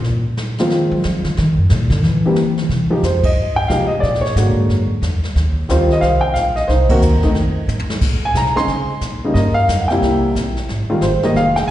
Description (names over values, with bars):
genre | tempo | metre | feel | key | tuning
jazz piano trio | 180 BPM | 4/4 | swing 62% on 8ths | F minor | A4 = 440 Hz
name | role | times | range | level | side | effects
upright bass | bass | 0.0-11.7 s | F1 to Gb3 | -17 LUFS | equal | none
jazz brush drum kit | drums | 0.0-11.7 s | brushed snare drum, crash cymbal, hi-hat, kick drum, ride cymbal, snare drum, toms | -24 LUFS | equal | slapback echo
dark grand piano | melody | 0.6-11.7 s | C3 to C6 | -16 LUFS | equal | slapback echo
room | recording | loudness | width
light reverb | live gig heard through the venue's PA, recital hall reverb, nothing above 10.5 kHz | -14 LUFS | side -13 dB against mid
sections
0.0-2.7 A section; 2.7-11.7 B section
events
upright bass solo 0.0-2.7; band accent 3.2, 6.9; drum fill 7.7-8.0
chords
0.0 Fm7; 1.4 Gbaug; 2.0 C (rootless); 2.7 Fm9; 4.0 Bb7alt; 5.4 Eb69; 6.7 Cm7; 7.4 F; 8.0 Bbm9; 9.4 F9sus4; 10.0 C7; 10.7 Fm9